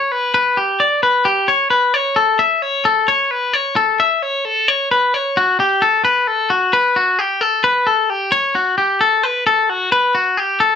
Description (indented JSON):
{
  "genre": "rock",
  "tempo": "264 BPM (eighths)",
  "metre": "7/8",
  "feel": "straight",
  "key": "unclear",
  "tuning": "A4 = 439 Hz",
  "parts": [
    { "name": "twangy electric guitar", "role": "solo", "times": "0.0-10.8 s", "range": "F#4 to E5", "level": "-13 LUFS", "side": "left 2 dB", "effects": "none" }
  ],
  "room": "moderate small room reverb, RT60 0.6 s",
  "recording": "dark, warm production, nothing above 8.0 kHz",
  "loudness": "-13 LUFS",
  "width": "side -7 dB against mid",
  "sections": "0.0-5.1 A section; 5.1-10.8 B section",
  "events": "none",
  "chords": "none"
}